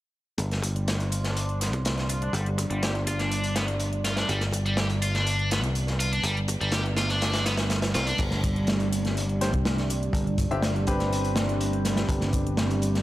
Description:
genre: breakbeat, breaks.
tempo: 123 BPM.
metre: 4/4.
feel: straight.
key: G major.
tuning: A4 = 440 Hz.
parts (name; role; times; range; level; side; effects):
dark analog pad; sustained chords; 0.4-13.0 s; G3 to C6; -31 LUFS; right 2 dB; chorus, sidechain pumping.
high-gain distorted guitar; riff; 0.4-8.2 s; G3 to G4; -30 LUFS; equal; distortion, low-pass filter, dub echo.
picked electric bass; bass; 0.4-13.0 s; G1 to C2; -28 LUFS; equal; low-pass filter.
crunchy breakbeat drum kit; drums; 0.4-13.0 s; crash cymbal, hi-hat, kick drum, snare drum; -29 LUFS; equal; high-pass filter on kick, high-pass filter on hats, high-pass filter on cymbals, high-pass filter on snare, high-pass filter on room.
electronic hi-hat; drums; 0.4-13.0 s; none; -39 LUFS; left 1 dB; none.
bright baby grand piano; stabs; 9.4-13.0 s; C4 to E5; -31 LUFS; left 2 dB; dub echo.
room: light reverb, studio reverb.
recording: none.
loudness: -24 LUFS.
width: side -15 dB against mid.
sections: 0.4-8.2 A section; 8.2-13.0 B section.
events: filter sweep on picked electric bass 0.4-8.2; filter sweep on distorted electric guitar 0.4-8.2.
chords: 0.4 Gsus4.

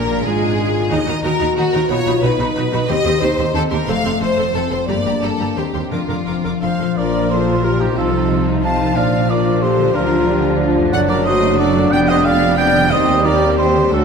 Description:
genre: classical.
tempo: 181 BPM.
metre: 3/4.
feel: rubato.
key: Bb major.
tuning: A4 = 439 Hz.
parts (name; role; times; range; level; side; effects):
clear symphonic violin section; melody; 0.0-14.0 s; F4 to D6; -30 LUFS; left 4 dB; none.
bright symphonic violin section; second line; 0.0-14.0 s; F4 to A5; -23 LUFS; left 2 dB; none.
clear symphonic viola section; accompaniment; 0.0-14.0 s; D3 to Bb4; -25 LUFS; right 2 dB; none.
warm French horn section; sustained chords; 0.0-14.0 s; A3 to G4; -21 LUFS; left 4 dB; none.
concert harp; arpeggios; 0.0-14.0 s; F2 to Eb5; -24 LUFS; left 8 dB; none.
clear symphonic cello section; bass; 0.0-14.0 s; D2 to Eb3; -23 LUFS; right 5 dB; none.
clear symphonic double bass section; bass; 0.0-14.0 s; F1 to Eb2; -23 LUFS; right 4 dB; none.
mellow cor anglais; second line; 6.6-14.0 s; G4 to A5; -20 LUFS; right 3 dB; none.
silver concert flute; second line; 6.6-14.0 s; Eb4 to F5; -24 LUFS; equal; none.
dark clarinet; second line; 7.0-14.0 s; B3 to F4; -25 LUFS; equal; none.
mellow bassoon; accompaniment; 7.0-14.0 s; F3 to G3; -24 LUFS; right 3 dB; none.
room: wet scoring stage reverb, RT60 1.6 s.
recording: none.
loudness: -14 LUFS.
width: side -6 dB against mid.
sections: 0.0-7.0 A section; 7.0-14.0 B section.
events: none.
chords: 0.0 Bb7; 0.9 Ebm; 1.9 B; 2.9 Cm/Eb; 3.9 F; 4.9 Gm; 5.6 Cm/Eb; 5.9 Bb/F; 6.6 F; 7.0 Bb; 8.0 F7/C; 9.0 Bb; 10.0 Bb/D; 10.9 D/F#; 11.9 G7/F; 12.9 Cm/Eb.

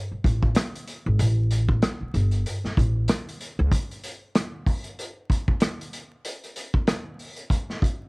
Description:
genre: hip hop, boom-bap hip-hop.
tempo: 95 BPM.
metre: 4/4.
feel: swing 59% on 16ths.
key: unclear.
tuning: A4 = 442 Hz.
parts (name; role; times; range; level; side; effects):
upright bass; bass; 0.1-3.7 s; G1 to C#2; -22 LUFS; equal; none.
vintage drum kit; drums; 0.2-8.0 s; hi-hat, kick drum, rim click, snare drum; -24 LUFS; equal; cassette tape.
room: little or no reverb.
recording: home recording on cassette, vinyl crackle.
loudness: -22 LUFS.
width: side -32 dB against mid.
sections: 0.0-8.1 A section.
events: break 3.7-8.1.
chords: none.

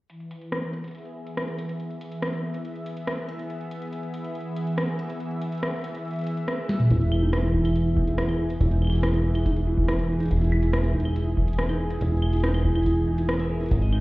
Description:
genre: IDM.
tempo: 141 BPM.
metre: 4/4.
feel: straight.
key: E major.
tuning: A4 = 441 Hz.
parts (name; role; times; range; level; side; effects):
warm analog pad; sustained chords; 0.1-14.0 s; E3 to E5; -30 LUFS; equal; chorus.
booming analog drum machine; drums; 0.1-14.0 s; claves, hi-hat, rim click, snare drum, toms; -30 LUFS; equal; overdrive, low-pass filter on hats, low-pass filter on snare, low-pass filter on toms, low-pass filter on perc, ping-pong delay.
harp-like synth pluck; arpeggios; 6.9-14.0 s; D#4 to E5; -28 LUFS; right 1 dB; chorus, ping-pong delay.
deep acid bass; bass; 6.9-14.0 s; E1 to G#1; -24 LUFS; equal; none.
electronic kick drum; drums; 6.9-13.8 s; none; -27 LUFS; equal; overdrive.
room: light reverb.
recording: heard muffled through a wall, stone room reverb, EQ.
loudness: -23 LUFS.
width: side -20 dB against mid.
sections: 0.1-6.9 A section; 6.9-14.0 B section.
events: filter sweep on drum 0.1-6.9; drum fill 6.7.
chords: 0.1 E.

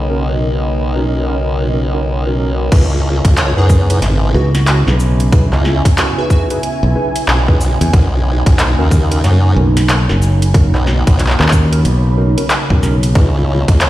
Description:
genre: glitch hop.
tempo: 92 BPM.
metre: 4/4.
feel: swing 62% on 16ths.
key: C# dorian.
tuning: A4 = 440 Hz.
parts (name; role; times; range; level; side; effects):
warbly tape-like pad; sustained chords; 0.0-13.9 s; C#3 to E4; -22 LUFS; right 1 dB; chorus, built-in reverb, sidechain pumping.
formant-sweep wobble bass; bass; 0.0-13.9 s; G#1 to F#2; -14 LUFS; equal; chorus.
ethereal airy pad; texture; 0.0-13.9 s; C#4 to B5; -24 LUFS; equal; ensemble chorus, built-in reverb, sidechain pumping.
mellow tine electric piano; stabs; 0.1-13.3 s; C#4 to B4; -23 LUFS; equal; medium stereo tremolo, sidechain pumping, dub echo.
drum and bass drum kit; drums; 2.7-13.9 s; crash cymbal, handclaps, hi-hat, shaker, snare drum; -19 LUFS; equal; overdrive, small room ambience.
electronic kick drum; drums; 2.7-13.8 s; none; -10 LUFS; equal; overdrive, small room ambience.
plucky unison lead; melody; 3.4-6.4, 13.8-13.9 s; F#4 to C#5; -26 LUFS; right 1 dB; dub echo.
modern bright fingered electric bass; bass; 4.3-13.1 s; F#1 to E2; -12 LUFS; equal; none.
room: digital ambience.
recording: played on a big sound system in a bare room, stone room reverb, vinyl crackle.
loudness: -11 LUFS.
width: side -15 dB against mid.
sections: 0.0-2.7 A section; 2.7-13.9 B section.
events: drop 2.7-13.9.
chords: 0.0 Bmaj9; 2.7 C#m7; 7.9 Bmaj9; 13.2 C#m7.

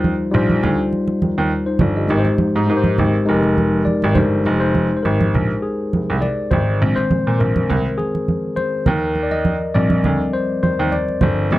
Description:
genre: lush 1970s-style soul.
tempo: 102 BPM.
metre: 4/4.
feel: swing 54% on 16ths.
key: unclear.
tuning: A4 = 440 Hz.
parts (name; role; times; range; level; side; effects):
bright tine electric piano; accompaniment; 0.0-11.6 s; Eb3 to Eb5; -19 LUFS; left 2 dB; none.
clear baby grand piano; bass; 0.0-11.6 s; F1 to Bb2; -19 LUFS; right 1 dB; none.
congas; percussion; 0.0-11.6 s; none; -21 LUFS; right 2 dB; none.
room: small room ambience.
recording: dry, close 1970s-style studio recording.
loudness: -15 LUFS.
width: side -16 dB against mid.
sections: 0.0-4.5 A section; 4.5-11.6 A section.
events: tine electric piano solo 4.5-11.6.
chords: 0.0 Eb69; 2.1 Abmaj7; 3.3 Fm11; 6.8 Bb9sus4; 8.9 Eb69.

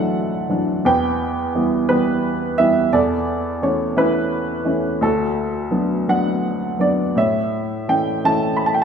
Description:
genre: classical, lyrical solo piano.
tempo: 57 BPM (dotted quarters).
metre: 6/8.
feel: rubato.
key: unclear.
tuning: A4 = 440 Hz.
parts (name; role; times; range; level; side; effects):
warm baby grand piano; solo; 0.0-8.8 s; D2 to B5; -17 LUFS; right 1 dB; none.
room: wet scoring stage reverb, RT60 1.6 s.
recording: recorded in a church or concert hall.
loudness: -17 LUFS.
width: side -7 dB against mid.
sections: 0.0-8.8 A section.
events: none.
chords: 0.0 Dadd9; 0.8 Em; 2.9 A/E; 5.0 D6; 7.2 A.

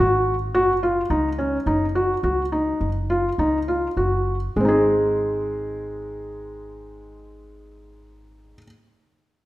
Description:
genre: contemporary instrumental, contemporary.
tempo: 100-108 BPM.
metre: 7/4.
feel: straight.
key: Ab mixolydian.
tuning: A4 = 440 Hz.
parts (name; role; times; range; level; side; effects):
felt-muted upright piano; arpeggios; 0.0-8.7 s; Ab3 to Ab4; -21 LUFS; equal; none.
upright bass; bass; 0.0-8.5 s; Gb1 to Db2; -27 LUFS; equal; none.
room: wet recital hall reverb, RT60 1.4 s.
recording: none.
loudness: -19 LUFS.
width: side -16 dB against mid.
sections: 0.0-4.6 A section; 4.6-8.8 B section.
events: slowing down 0.0-4.6.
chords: 0.0 Ab7(no3); 0.5 Gb5; 4.6 Ab.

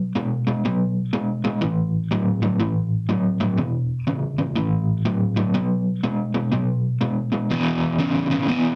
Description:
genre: blues.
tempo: 122 BPM.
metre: 4/4.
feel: swing 64% on 8ths.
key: E major.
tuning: A4 = 440 Hz.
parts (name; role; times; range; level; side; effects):
overdriven semi-hollow guitar; solo; 0.0-8.8 s; E2 to G#3; -22 LUFS; equal; tremolo.
room: wet small room reverb, RT60 0.5 s.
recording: none.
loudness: -22 LUFS.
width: mono.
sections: 0.0-7.5 A section; 7.5-8.8 B section.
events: none.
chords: 0.0 B5; 1.6 A5; 3.6 E5; 4.6 A5; 5.5 B5; 7.5 E5.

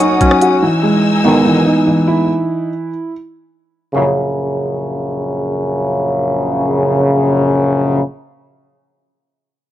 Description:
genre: hip hop, trap.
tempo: 145 BPM.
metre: 4/4.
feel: half-time.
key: unclear.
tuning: A4 = 439 Hz.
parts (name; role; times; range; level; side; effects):
dark concert grand piano; accompaniment; 0.0-3.1 s; E3 to Gb4; -13 LUFS; right 1 dB; low-pass filter.
dark symphonic string section; sustained chords; 0.0-2.3 s; D#4 to E6; -21 LUFS; left 2 dB; none.
soft electric-piano-like synth keys; arpeggios; 0.0-0.6 s; Db4 to Gb4; -16 LUFS; left 3 dB; chorus, low-pass filter, tape echo.
trap drum kit; drums; 0.0-0.5 s; hi-hat, kick drum, rim click; -15 LUFS; equal; vintage 12-bit sampler grit.
warm brass ensemble; stabs; 1.2-8.0 s; Bb1 to D#3; -14 LUFS; equal; none.
room: little or no reverb.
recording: dry, gritty hardware recording.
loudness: -12 LUFS.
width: side -12 dB against mid.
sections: 0.0-3.9 A section; 3.9-7.2 B section.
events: none.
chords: 0.0 Ebm7; 0.6 Emaj7; 3.9 Gb/Bb.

